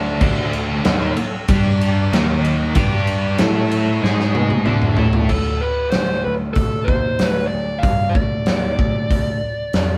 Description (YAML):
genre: hard rock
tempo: 95 BPM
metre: 4/4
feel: straight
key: unclear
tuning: A4 = 438 Hz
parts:
  - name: bright tonewheel organ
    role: sustained chords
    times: 0.0-5.3 s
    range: G4 to E6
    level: -35 LUFS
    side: equal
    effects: none
  - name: cranked stack guitar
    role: riff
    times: 0.0-5.3 s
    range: D3 to A4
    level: -25 LUFS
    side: equal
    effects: overdrive, tremolo
  - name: sludgy distorted guitar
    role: riff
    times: 0.0-5.3 s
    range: D3 to A4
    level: -26 LUFS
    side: equal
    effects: overdrive
  - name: picked electric bass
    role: bass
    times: 0.0-10.0 s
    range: D2 to A2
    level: -24 LUFS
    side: equal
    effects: none
  - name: big rock drum kit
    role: drums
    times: 0.2-9.9 s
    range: crash cymbal, hi-hat, kick drum, ride cymbal, snare drum, toms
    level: -22 LUFS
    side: equal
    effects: none
  - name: bluesy overdriven lead guitar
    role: melody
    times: 5.3-10.0 s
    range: A4 to F5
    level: -25 LUFS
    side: equal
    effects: distortion
room: moderate studio ambience, RT60 0.5 s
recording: band playing live in one room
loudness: -18 LUFS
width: mono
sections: 0.0-5.3 A section; 5.3-10.0 B section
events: drum fill 4.0-5.3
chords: 0.0 Dm; 1.5 G5; 2.1 Eb5; 2.8 G5; 3.4 A5; 4.0 G#5; 4.7 D5; 5.3 D7(no3)